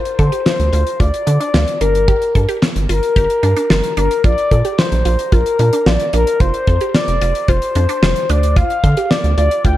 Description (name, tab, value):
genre	synth-pop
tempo	111 BPM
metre	4/4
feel	straight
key	G minor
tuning	A4 = 439 Hz
part	mellow horn-like synth lead	melody	0.0-9.8 s	Bb4 to G5	-17 LUFS	left 2 dB	chorus, slapback echo, shimmer reverb
part	resonant blip pluck	arpeggios	0.0-9.8 s	D4 to A4	-24 LUFS	right 2 dB	phaser, slapback echo, shimmer reverb
part	damped 70s drum kit	drums	0.1-9.8 s	hi-hat, kick drum, snare drum	-16 LUFS	equal	gated reverb
part	rubbery square bass	bass	0.2-9.8 s	F1 to D3	-15 LUFS	equal	none
room	light reverb, small room ambience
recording	none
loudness	-12 LUFS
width	side -14 dB against mid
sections	0.0-9.8 A section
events	none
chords	0.0 Dm7; 1.8 Gm; 4.2 Bb; 6.4 F5; 8.3 Dm